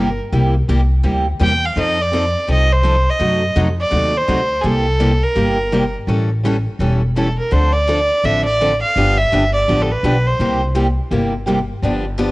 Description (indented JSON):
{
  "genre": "acoustic string swing (jazz manouche)",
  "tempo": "167 BPM",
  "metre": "4/4",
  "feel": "swing 61% on 8ths",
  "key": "C mixolydian",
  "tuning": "A4 = 440 Hz",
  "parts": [
    { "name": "rich fiddle", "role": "melody", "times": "0.0-10.6 s", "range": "Ab4 to G5", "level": "-18 LUFS", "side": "right 1 dB", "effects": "cassette tape" },
    { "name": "picked steel-string acoustic guitar", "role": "accompaniment", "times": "0.0-12.3 s", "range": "C3 to A4", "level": "-22 LUFS", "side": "left 2 dB", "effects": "cassette tape" },
    { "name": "picked steel-string acoustic guitar", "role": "accompaniment", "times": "0.0-12.3 s", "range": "C3 to A4", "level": "-23 LUFS", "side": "right 2 dB", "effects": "cassette tape" },
    { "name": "upright bass", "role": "bass", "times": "0.0-12.3 s", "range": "E1 to F#2", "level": "-18 LUFS", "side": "equal", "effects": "none" }
  ],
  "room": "light reverb, small room ambience",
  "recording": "home recording on cassette, nothing above 11.0 kHz",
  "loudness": "-14 LUFS",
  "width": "side -20 dB against mid",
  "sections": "0.0-12.3 A section",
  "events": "none",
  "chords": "0.0 C7; 1.8 F7; 3.2 F#dim7; 4.6 C7; 6.1 A7; 7.5 Dm7; 9.0 G7; 10.4 C7",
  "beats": "| 0.33 0.69 1.05 1.41 | 1.77 2.13 2.48 2.84 | 3.20 3.56 3.92 4.28 | 4.64 5.00 5.36 5.72 | 6.08 6.43 6.79 7.15 | 7.51 7.87 8.23 8.59 | 8.95 9.31 9.67 10.03 | 10.39 10.75 11.11 11.47 | 11.83 12.19"
}